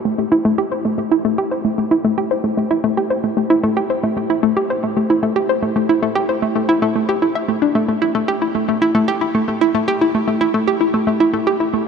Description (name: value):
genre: ambient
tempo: 113 BPM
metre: 4/4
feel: straight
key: A minor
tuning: A4 = 440 Hz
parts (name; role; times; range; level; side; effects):
- hollow square pluck; solo; 0.1-11.8 s; A3 to E5; -15 LUFS; equal; chorus, tape echo
room: wet huge ambient reverb, RT60 7.5 s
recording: none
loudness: -15 LUFS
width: side -6 dB against mid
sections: 0.0-11.9 A section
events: none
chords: none